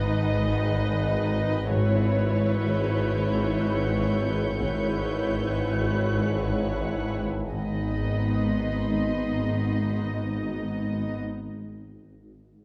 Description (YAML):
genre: cinematic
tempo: free time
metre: none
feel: none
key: G# harmonic minor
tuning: A4 = 441 Hz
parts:
  - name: muted studio violin section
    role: melody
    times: 0.0-11.2 s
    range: C#5 to D#5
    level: -35 LUFS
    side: equal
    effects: none
  - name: muted studio viola section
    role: accompaniment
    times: 0.0-11.2 s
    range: B3 to B4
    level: -33 LUFS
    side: equal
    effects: none
  - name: muted studio cello section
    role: bass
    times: 0.0-11.2 s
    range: G#2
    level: -31 LUFS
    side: equal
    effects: none
  - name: swarming drone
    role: drone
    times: 0.0-11.2 s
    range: G#1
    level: -33 LUFS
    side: equal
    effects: built-in reverb, phaser
  - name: muted studio double bass section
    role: bass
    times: 1.7-11.2 s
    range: G#1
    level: -33 LUFS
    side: equal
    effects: none
  - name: muted studio violin section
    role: texture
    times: 1.7-10.0 s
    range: B5 to G6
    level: -43 LUFS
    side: equal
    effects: none
room: moderate scoring stage reverb, RT60 1.9 s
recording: none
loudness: -26 LUFS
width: mono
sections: 0.0-7.5 A section; 7.5-10.4 B section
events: none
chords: 0.0 G#m; 1.7 C#m7/G#; 7.5 G#m